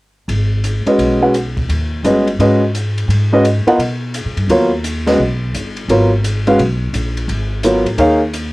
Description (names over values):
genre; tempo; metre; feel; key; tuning
modal jazz; 172 BPM; 4/4; swing 64% on 8ths; G# dorian; A4 = 438 Hz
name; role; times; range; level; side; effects
upright bass; bass; 0.3-8.5 s; G1 to B2; -18 LUFS; equal; none
open jazz drum kit; drums; 0.3-8.4 s; hi-hat, kick drum, ride cymbal, snare drum; -26 LUFS; left 1 dB; cassette tape
warm concert grand piano; accompaniment; 0.9-8.2 s; F#3 to F#5; -12 LUFS; equal; cassette tape
room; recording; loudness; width
little or no reverb; home recording on cassette; -13 LUFS; side -20 dB against mid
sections
0.3-8.5 A section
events
none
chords
0.3 G#m9